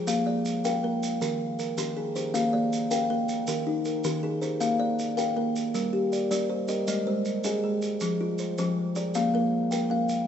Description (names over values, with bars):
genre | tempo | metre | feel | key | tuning
southern african traditional, mbira-style interlocking cycle | 106 BPM (dotted quarters) | 12/8 | straight | Bb mixolydian | A4 = 440 Hz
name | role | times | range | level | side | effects
kalimba | arpeggios | 0.0-10.3 s | Eb3 to F5 | -26 LUFS | left 3 dB | none
kalimba | arpeggios | 0.0-10.3 s | Eb3 to G5 | -31 LUFS | right 6 dB | none
maracas | percussion | 0.1-10.3 s | none | -38 LUFS | right 5 dB | none
room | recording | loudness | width
moderate lush hall reverb, RT60 2.5 s | rough home demo mix, nothing above 8.0 kHz | -25 LUFS | side -8 dB against mid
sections
0.1-9.1 A section; 9.1-10.3 B section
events
none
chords
0.1 Bb; 1.2 Eb; 2.3 Bb; 3.5 Eb; 4.6 Bb; 5.7 Gm; 6.9 Ab; 8.0 Fm; 9.1 Bb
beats
| 0.08 0.64 1.21 1.78 | 2.35 2.91 3.48 4.04 | 4.61 5.18 5.75 6.31 | 6.88 7.45 8.01 8.58 | 9.15 9.71